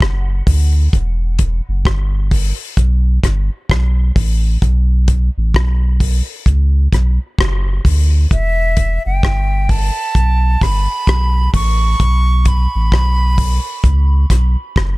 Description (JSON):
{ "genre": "dub reggae", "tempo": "65 BPM", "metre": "4/4", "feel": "swing 63% on 16ths", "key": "E dorian", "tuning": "A4 = 441 Hz", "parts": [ { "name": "warm sub bass", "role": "bass", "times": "0.0-15.0 s", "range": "E1 to D2", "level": "-14 LUFS", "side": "equal", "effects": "none" }, { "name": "damped 70s drum kit", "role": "drums", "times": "0.0-15.0 s", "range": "hi-hat, kick drum, rim click", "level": "-16 LUFS", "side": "equal", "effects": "none" }, { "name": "breathy silver concert flute", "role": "melody", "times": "8.3-14.3 s", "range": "E5 to C#6", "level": "-21 LUFS", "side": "right 1 dB", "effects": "dub echo" } ], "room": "small room ambience", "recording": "none", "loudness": "-12 LUFS", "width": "side -21 dB against mid", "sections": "0.0-15.0 A section", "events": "none", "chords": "0.0 Bm (rootless); 0.9 Em; 4.6 N.C.; 8.3 Em; 12.0 N.C.", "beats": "0.01 | 0.93 1.85 2.77 3.70 | 4.62 5.54 6.46 7.39 | 8.31 9.23 10.15 11.07 | 12.00 12.92 13.84 14.76" }